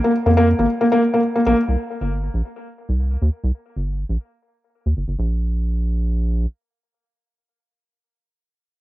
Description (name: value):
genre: IDM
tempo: 137 BPM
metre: 4/4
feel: straight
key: unclear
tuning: A4 = 440 Hz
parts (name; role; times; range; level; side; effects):
- felt-muted upright piano; arpeggios; 0.0-1.6 s; Bb3; -17 LUFS; left 1 dB; analog delay
- rubbery square bass; bass; 0.3-6.5 s; G1 to F2; -19 LUFS; equal; none
room: moderate spring reverb, RT60 2.7 s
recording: home recording on cassette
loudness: -18 LUFS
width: side -16 dB against mid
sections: 0.0-5.2 A section; 5.2-8.7 B section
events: filter sweep on analog synth bass 0.0-5.2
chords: 0.0 Bb5; 1.7 Gsus4; 5.2 N.C.